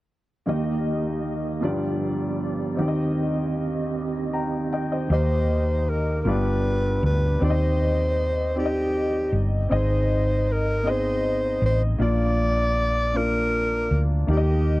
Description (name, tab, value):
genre	gospel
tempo	52 BPM (dotted quarters)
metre	6/8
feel	straight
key	Eb major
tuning	A4 = 435 Hz
part	warm concert grand piano	accompaniment	0.5-14.8 s	G1 to Bb5	-26 LUFS	left 1 dB	none
part	mellow tonewheel organ	sustained chords	0.5-5.1 s	Eb3 to Eb5	-28 LUFS	right 4 dB	fast rotary speaker, chorus vibrato
part	breathy alto saxophone	melody	5.1-14.8 s	G4 to D5	-25 LUFS	equal	none
part	hollow-body short-scale fingered electric bass	bass	5.1-14.8 s	G1 to Eb2	-23 LUFS	equal	none
room	little or no reverb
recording	dry, close 1970s-style studio recording, lossy compression artefacts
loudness	-21 LUFS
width	side -18 dB against mid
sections	0.5-5.1 A section; 5.1-14.8 B section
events	none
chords	0.5 Eb; 1.6 G7; 2.8 Cm/Eb; 6.3 G7; 7.4 Cm/Eb; 9.7 Ab; 12.0 Bb